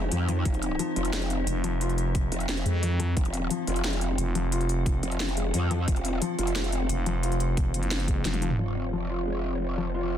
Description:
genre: dark technical drum and bass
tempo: 177 BPM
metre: 4/4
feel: straight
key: F minor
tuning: A4 = 440 Hz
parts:
  - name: metallic inharmonic drone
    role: sustained chords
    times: 0.0-10.2 s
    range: F3 to F4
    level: -33 LUFS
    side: equal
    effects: chorus, built-in reverb, sidechain pumping
  - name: felt-muted upright piano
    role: arpeggios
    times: 0.0-10.1 s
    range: F3 to F4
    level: -32 LUFS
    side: left 4 dB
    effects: sidechain pumping, low-pass filter, ping-pong delay
  - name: growl bass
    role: bass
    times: 0.0-10.2 s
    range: F1 to F2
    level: -29 LUFS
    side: right 1 dB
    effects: chorus, overdrive
  - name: drum and bass drum kit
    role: drums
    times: 0.1-10.2 s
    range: hi-hat, rim click, shaker, snare drum, toms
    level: -33 LUFS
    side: equal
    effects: low-pass filter on hats, studio ambience, low-pass filter on snare, low-pass filter on toms, low-pass filter on perc
  - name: electronic kick drum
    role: drums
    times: 0.5-8.1 s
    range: none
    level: -26 LUFS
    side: equal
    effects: studio ambience
  - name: growling FM bass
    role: bass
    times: 1.5-8.6 s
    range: F1 to F2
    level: -27 LUFS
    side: right 1 dB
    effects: none
room: light reverb, digital ambience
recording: dense, heavily limited modern master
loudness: -25 LUFS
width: side -10 dB against mid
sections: 0.0-8.6 A section; 8.6-10.2 B section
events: drum fill 8.3-8.6; filter sweep on synth drone 8.6-10.2; filter sweep on felt piano 8.6-10.2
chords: 0.0 F5

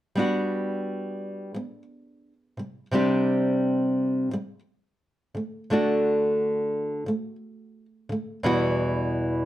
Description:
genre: pop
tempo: 87 BPM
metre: 4/4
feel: straight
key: G major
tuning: A4 = 440 Hz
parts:
  - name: nylon-string guitar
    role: accompaniment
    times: 0.2-9.5 s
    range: E2 to G4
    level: -23 LUFS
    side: equal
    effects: none
room: moderate studio reverb, RT60 0.7 s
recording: dark, warm production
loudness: -23 LUFS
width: side -14 dB against mid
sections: 0.2-9.5 A section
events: none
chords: 0.2 Gmaj7; 2.6 Csus2; 5.3 D; 8.5 Emadd9

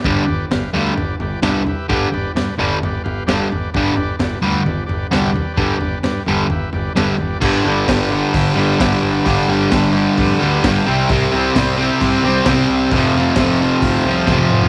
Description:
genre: garage rock duo or trio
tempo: 131 BPM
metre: 4/4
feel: straight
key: G mixolydian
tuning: A4 = 440 Hz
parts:
  - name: overdriven combo organ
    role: sustained chords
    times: 0.0-14.7 s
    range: G4 to F5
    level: -28 LUFS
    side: equal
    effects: none
  - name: fuzz guitar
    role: riff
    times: 0.0-14.7 s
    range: F2 to C4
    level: -18 LUFS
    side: equal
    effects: distortion
  - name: fuzz picked electric bass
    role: bass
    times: 0.0-14.7 s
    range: F1 to G2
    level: -26 LUFS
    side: equal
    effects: overdrive
  - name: crunchy breakbeat drum kit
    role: drums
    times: 0.0-14.7 s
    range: crash cymbal, hi-hat, kick drum, snare drum, toms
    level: -24 LUFS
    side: equal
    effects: none
room: light reverb, small room ambience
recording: none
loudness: -17 LUFS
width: mono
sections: 0.0-7.4 A section; 7.4-14.7 B section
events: drum fill 14.3-14.7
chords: 0.0 G; 10.9 C; 12.9 F

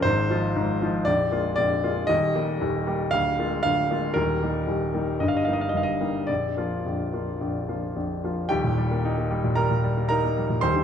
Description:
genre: classical, virtuoso piano study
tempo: 106-118 BPM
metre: 4/4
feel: rubato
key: Eb major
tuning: A4 = 440 Hz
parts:
  - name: clear baby grand piano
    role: solo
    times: 0.0-10.8 s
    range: Bb0 to C6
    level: -22 LUFS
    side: equal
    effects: none
room: moderate recital hall reverb, RT60 1.5 s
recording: dark, warm production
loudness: -22 LUFS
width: side -8 dB against mid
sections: 0.0-8.5 A section; 8.5-10.8 B section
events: none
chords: 0.0 Fm7/Ab; 1.1 Bb7; 2.1 Eb; 3.1 Bb7/D; 4.2 Eb; 5.2 Eb/G; 6.3 Bb; 8.5 Eb

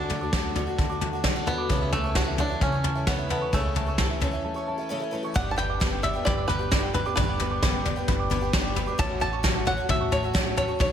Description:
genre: indie folk with a building arrangement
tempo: 132 BPM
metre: 4/4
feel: straight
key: unclear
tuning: A4 = 440 Hz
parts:
  - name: bluegrass banjo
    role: melody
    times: 0.0-10.9 s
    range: A3 to A5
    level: -30 LUFS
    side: equal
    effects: slapback echo, digital delay
  - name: fingerpicked steel-string acoustic guitar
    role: accompaniment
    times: 0.0-5.3 s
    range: D2 to F#4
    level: -36 LUFS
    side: left 3 dB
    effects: none
  - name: picked twelve-string acoustic guitar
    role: accompaniment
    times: 0.0-10.9 s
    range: G2 to A4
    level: -33 LUFS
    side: left 5 dB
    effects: slapback echo
  - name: dark upright piano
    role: arpeggios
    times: 0.0-10.9 s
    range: C#5 to D6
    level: -32 LUFS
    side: right 4 dB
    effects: slapback echo, digital delay
  - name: upright bass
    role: bass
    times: 0.0-10.9 s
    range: G1 to D3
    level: -32 LUFS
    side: equal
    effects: none
  - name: soft brush drum kit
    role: drums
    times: 0.1-10.9 s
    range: kick drum, snare drum, toms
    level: -26 LUFS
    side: equal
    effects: none
room: moderate lush hall reverb, RT60 1.7 s, studio reverb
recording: big arena sound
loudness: -23 LUFS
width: side -9 dB against mid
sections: 0.0-5.4 A section; 5.4-10.9 B section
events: break 4.4-5.4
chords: 0.0 D; 1.7 A/C#; 5.4 G; 9.0 A6

